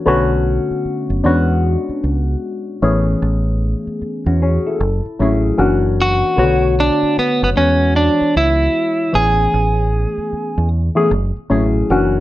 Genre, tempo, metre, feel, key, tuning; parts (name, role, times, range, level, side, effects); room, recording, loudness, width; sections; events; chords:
R&B, neo-soul; 76 BPM; 4/4; swing 63% on 16ths; A4 = 440 Hz
barky reed electric piano; accompaniment; 0.0-12.2 s; C#3 to C#5; -18 LUFS; left 2 dB; phaser, plate reverb
deep dub fingered electric bass; bass; 0.1-12.2 s; F#1 to E2; -17 LUFS; right 1 dB
electric guitar at the edge of break-up; melody; 6.0-10.7 s; B3 to G#4; -16 LUFS; right 1 dB; slapback echo, plate reverb
moderate studio reverb, RT60 0.6 s; -14 LUFS; side -15 dB against mid
0.0-12.2 A section
0.1 Bm9; 1.2 E13; 2.8 Amaj7; 4.8 F#m9; 5.6 F#7b13; 6.4 Bm9; 7.5 E69; 9.1 Amaj7; 11.1 F#m9